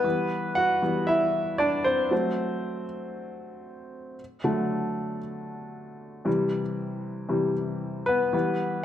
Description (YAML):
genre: pop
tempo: 116 BPM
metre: 4/4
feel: straight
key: E minor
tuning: A4 = 439 Hz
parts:
  - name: clear baby grand piano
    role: solo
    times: 0.0-8.8 s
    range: C3 to F#5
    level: -25 LUFS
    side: left 1 dB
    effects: none
room: moderate recital hall reverb, RT60 1.5 s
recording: dark, warm production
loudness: -24 LUFS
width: side -11 dB against mid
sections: 0.0-8.8 A section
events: grand piano solo 0.0-8.8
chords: 0.0 Emadd9; 2.1 F#dim; 4.2 D; 6.3 C; 8.3 Em